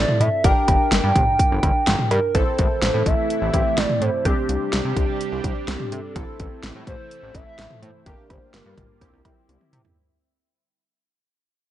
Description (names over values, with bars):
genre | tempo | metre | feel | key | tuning
synth-pop | 126 BPM | 4/4 | straight | C mixolydian | A4 = 440 Hz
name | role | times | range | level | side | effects
hollow clarinet-like synth lead | melody | 0.0-9.7 s | G4 to G5 | -23 LUFS | right 1 dB | chorus, plate reverb
warm analog keys | accompaniment | 0.0-9.9 s | Bb3 to Bb4 | -29 LUFS | left 1 dB | chorus, phaser, plate reverb
chorused synth bass | bass | 0.0-9.8 s | G1 to C3 | -24 LUFS | equal | none
pop drum kit | drums | 0.1-10.0 s | cowbell, hi-hat, kick drum, snare drum, toms | -22 LUFS | equal | gated reverb
phased analog pad | sustained chords | 2.3-10.0 s | C3 to G4 | -31 LUFS | right 3 dB | phaser, chorus
room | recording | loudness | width
light reverb | nothing above 10.6 kHz | -18 LUFS | side -12 dB against mid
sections
0.0-10.0 A section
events
fade-out 0.0-10.0; drum fill 9.5-10.0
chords
0.4 Gm; 2.3 Am; 4.3 Csus2; 6.2 Am; 8.1 Gm7; 9.0 Cadd9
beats
| 0.44 0.92 1.40 1.87 | 2.35 2.82 3.30 3.78 | 4.25 4.73 5.21 5.68 | 6.16 6.63 7.11 7.59 | 8.06 8.54 9.02 9.49